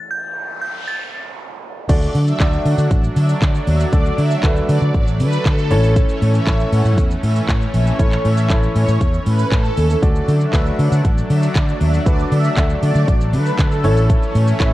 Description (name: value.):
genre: dance-pop.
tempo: 118 BPM.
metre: 4/4.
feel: straight.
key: D major.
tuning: A4 = 440 Hz.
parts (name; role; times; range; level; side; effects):
noise sweep; sound effects; 0.1-1.9 s; none; -32 LUFS; right 4 dB; none.
glassy synth bell; melody; 0.1-1.1 s; G6 to A6; -25 LUFS; equal; chorus, low-pass filter.
warm concert grand piano; accompaniment; 1.9-14.7 s; A3 to E5; -23 LUFS; equal; sidechain pumping, low-pass filter.
lush unison pad; sustained chords; 1.9-14.7 s; E3 to D4; -25 LUFS; equal; chorus, sidechain pumping, low-pass filter.
vintage muted fingered electric bass; bass; 1.9-14.7 s; A1 to D3; -16 LUFS; equal; sidechain pumping.
house drum kit; drums; 1.9-14.7 s; crash cymbal, handclaps, hi-hat, kick drum, shaker; -18 LUFS; equal; none.
group handclap; percussion; 10.5-14.7 s; none; -36 LUFS; left 1 dB; none.
room: little or no reverb.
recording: worn, warbling old tape, cassette tape, warbly pitch drift.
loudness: -14 LUFS.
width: side -16 dB against mid.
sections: 0.0-1.9 A section; 1.9-14.7 B section.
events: stop 0.0-1.9; noise sweep 0.1-1.9; drop 1.9-14.7.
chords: 0.0 N.C.; 1.9 D; 5.7 A; 10.0 D; 13.8 A.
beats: 0.37 0.88 1.38 | 1.89 2.40 2.91 3.42 | 3.93 4.43 4.94 5.45 | 5.96 6.47 6.98 7.49 | 7.99 8.50 9.01 9.52 | 10.03 10.54 11.04 11.55 | 12.06 12.57 13.08 13.59 | 14.10 14.60.